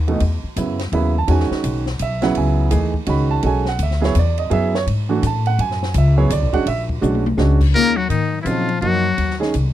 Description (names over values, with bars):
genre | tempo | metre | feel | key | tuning
modal jazz | 167 BPM | 3/4 | swing 64% on 8ths | C# minor | A4 = 442 Hz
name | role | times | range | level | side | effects
upright bass | bass | 0.0-9.7 s | A1 to Bb2 | -18 LUFS | left 1 dB | none
warm upright piano | accompaniment | 0.1-9.5 s | B2 to B5 | -20 LUFS | right 5 dB | none
compact cocktail drum kit | drums | 0.1-9.6 s | crash cymbal, hi-hat, kick drum, ride cymbal, snare drum, toms | -29 LUFS | left 2 dB | none
trumpet with metal mute | melody | 7.7-9.4 s | Eb4 to Bb4 | -20 LUFS | left 1 dB | none
breathy bass clarinet | second line | 7.7-9.4 s | Eb3 to Bb3 | -22 LUFS | left 12 dB | tape echo
room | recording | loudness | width
small room ambience | dry, close 1970s-style studio recording | -16 LUFS | side -12 dB against mid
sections
0.0-7.7 A section; 7.7-9.7 B section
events
drum fill 7.0-7.4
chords
0.0 C#m11; 3.4 Bm11; 6.7 A#7alt; 7.7 Ebm11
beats
| 0.21 0.57 0.93 | 1.28 1.64 2.00 | 2.36 2.72 3.08 | 3.43 3.79 4.15 | 4.51 4.87 5.23 | 5.59 5.94 6.30 | 6.66 7.02 7.38 | 7.74 8.10 8.46 | 8.82 9.18 9.54